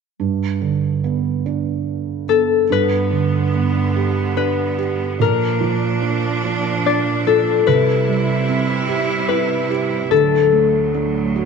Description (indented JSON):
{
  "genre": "children's music, lullaby",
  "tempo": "73 BPM",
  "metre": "3/4",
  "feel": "straight",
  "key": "G major",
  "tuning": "A4 = 438 Hz",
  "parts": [
    { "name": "felt-muted upright piano", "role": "accompaniment", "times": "0.2-11.5 s", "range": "G2 to G4", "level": "-20 LUFS", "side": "right 8 dB", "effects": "none" },
    { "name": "concert harp", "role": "melody", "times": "2.3-11.5 s", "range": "A4 to D5", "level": "-18 LUFS", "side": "left 10 dB", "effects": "none" },
    { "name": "clear symphonic string section", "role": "sustained chords", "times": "2.7-11.5 s", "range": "D2 to E4", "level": "-22 LUFS", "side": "right 1 dB", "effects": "none" }
  ],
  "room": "moderate plate reverb, RT60 2.7 s",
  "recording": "1960s-style stereo with parts hard left and right",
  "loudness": "-16 LUFS",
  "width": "side -5 dB against mid",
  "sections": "0.2-2.7 A section; 2.7-11.5 B section",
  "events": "none",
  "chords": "0.2 G; 5.2 Bb; 7.7 C; 10.1 D"
}